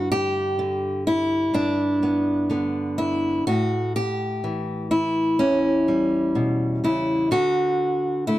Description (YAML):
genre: folk, solo fingerstyle acoustic guitar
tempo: 62 BPM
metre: 4/4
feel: straight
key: G major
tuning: A4 = 437 Hz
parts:
  - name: fingerpicked steel-string acoustic guitar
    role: solo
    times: 0.0-8.4 s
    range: E2 to G4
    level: -20 LUFS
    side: equal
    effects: none
room: light reverb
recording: dark, warm production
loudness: -20 LUFS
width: side -15 dB against mid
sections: 0.0-8.4 A section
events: none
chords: 0.0 G; 3.5 A7; 7.3 D